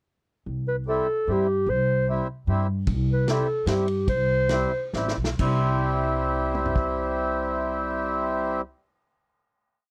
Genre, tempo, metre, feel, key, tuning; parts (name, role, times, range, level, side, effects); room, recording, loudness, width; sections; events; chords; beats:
alpine folk, alpine dance band; 129-151 BPM; 3/4; straight; C major; A4 = 435 Hz
upright bass; bass; 0.5-8.6 s; A1 to G2; -29 LUFS; equal
dark clarinet; melody; 0.7-4.9 s; G4 to C5; -26 LUFS; equal
mellow accordion; accompaniment; 0.9-8.6 s; G3 to E4; -28 LUFS; equal
vintage drum kit; drums; 2.9-6.9 s; crash cymbal, kick drum, ride cymbal, snare drum, toms; -31 LUFS; equal
little or no reverb; dry, close 1970s-style studio recording; -25 LUFS; mono
0.5-5.4 A section; 5.4-8.1 final chord
slowing down 2.9-5.4; drum fill 4.9-5.4
0.5 C
| 0.46 0.87 1.27 | 1.67 2.07 2.47 | 2.87 3.27 3.67 | 4.08 4.50 4.94 | 5.39 5.85 6.30 | 6.75 7.21 7.67